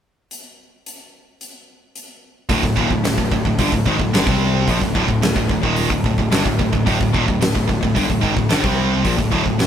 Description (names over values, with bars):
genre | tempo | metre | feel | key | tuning
hard rock | 110 BPM | 4/4 | straight | unclear | A4 = 441 Hz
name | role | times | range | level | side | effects
huge arena drum kit | drums | 0.3-9.7 s | hi-hat, kick drum, snare drum | -21 LUFS | equal | none
sludgy distorted guitar | riff | 2.5-9.7 s | D2 to C4 | -20 LUFS | left 3 dB | overdrive
tight distorted guitar | riff | 2.5-9.7 s | D2 to C4 | -22 LUFS | right 8 dB | distortion
modern bright picked electric bass | bass | 2.5-9.7 s | D1 to C2 | -25 LUFS | equal | none
room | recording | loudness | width
moderate small room reverb, RT60 0.5 s | band playing live in one room | -15 LUFS | side -9 dB against mid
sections
0.3-2.5 A section; 2.5-9.7 B section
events
none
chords
0.3 N.C.; 2.5 D5